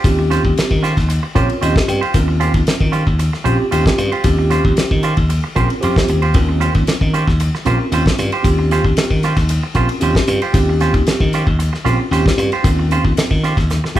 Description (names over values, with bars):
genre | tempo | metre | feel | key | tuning
electric jazz fusion | 114 BPM | 4/4 | straight | Eb mixolydian | A4 = 440 Hz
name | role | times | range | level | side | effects
bright tine electric piano | accompaniment | 0.0-14.0 s | C4 to G5 | -20 LUFS | equal | medium stereo tremolo
semi-hollow electric guitar | stabs | 0.0-14.0 s | Db4 to C5 | -22 LUFS | right 5 dB | none
glassy slap bass | bass | 0.0-14.0 s | Bb1 to Eb3 | -17 LUFS | equal | none
damped 70s drum kit | drums | 0.0-14.0 s | hi-hat, kick drum, ride cymbal, snare drum | -18 LUFS | equal | none
room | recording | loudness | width
moderate large studio reverb, RT60 0.8 s | band playing live in one room | -13 LUFS | side -13 dB against mid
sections
0.0-14.0 A section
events
tine electric piano fill 1.1-2.1, 5.6-6.3; drum fill 13.7-14.0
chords
0.0 Eb13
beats
| 0.04 0.57 1.09 1.62 | 2.15 2.67 3.20 3.72 | 4.25 4.77 5.30 5.82 | 6.35 6.87 7.40 7.92 | 8.45 8.97 9.50 10.02 | 10.55 11.07 11.59 12.12 | 12.64 13.17 13.69